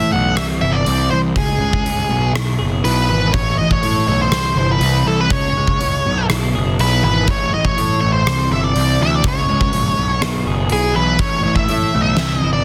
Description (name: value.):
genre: quiet-loud alternative rock.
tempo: 122 BPM.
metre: 4/4.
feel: straight.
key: E major.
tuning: A4 = 439 Hz.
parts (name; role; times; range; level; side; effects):
octave-fuzz lead guitar; melody; 0.0-12.6 s; G#4 to F#5; -21 LUFS; equal; distortion, slapback echo.
twelve-string electric guitar; arpeggios; 0.0-12.6 s; A2 to G#4; -23 LUFS; equal; none.
fuzz picked electric bass; bass; 0.0-12.6 s; F#1 to A2; -22 LUFS; equal; overdrive.
huge arena drum kit; drums; 0.4-12.3 s; hi-hat, kick drum, rim click, snare drum; -24 LUFS; equal; soft clipping on snare.
room: light reverb.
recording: dense, heavily limited modern master.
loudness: -16 LUFS.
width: mono.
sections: 0.0-12.6 A section.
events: none.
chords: 0.4 C; 1.4 C#5; 2.1 E; 3.3 A5; 4.3 C; 5.3 C#5; 6.1 E; 7.3 A5; 8.3 C; 9.2 C#5; 10.0 E; 11.2 A5.